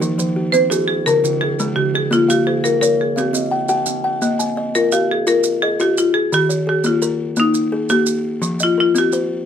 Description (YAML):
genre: southern african traditional, mbira-style interlocking cycle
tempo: 114 BPM (dotted quarters)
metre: 12/8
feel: straight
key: Bb equiheptatonic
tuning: A4 = 439 Hz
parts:
  - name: buzzing kalimba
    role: arpeggios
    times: 0.0-9.5 s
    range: Db3+43c to Ab5+29c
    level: -20 LUFS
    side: left 2 dB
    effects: none
  - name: kalimba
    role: arpeggios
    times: 0.0-4.6 s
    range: Db3+43c to Ab5+29c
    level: -25 LUFS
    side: right 4 dB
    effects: none
  - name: maracas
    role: percussion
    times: 0.0-9.3 s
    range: none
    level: -27 LUFS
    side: right 6 dB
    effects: none
  - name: marimba with hard mallets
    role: melody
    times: 0.5-9.5 s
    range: Eb4 to C5-29c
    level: -17 LUFS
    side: left 1 dB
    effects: none
room: light reverb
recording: close, detailed microphones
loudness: -15 LUFS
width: side -8 dB against mid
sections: 0.0-4.2 A section; 4.2-9.5 B section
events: none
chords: 0.0 Fm; 1.1 Db; 2.1 Bbm; 3.2 Cm; 4.2 Bb5; 6.3 Eb; 8.4 F5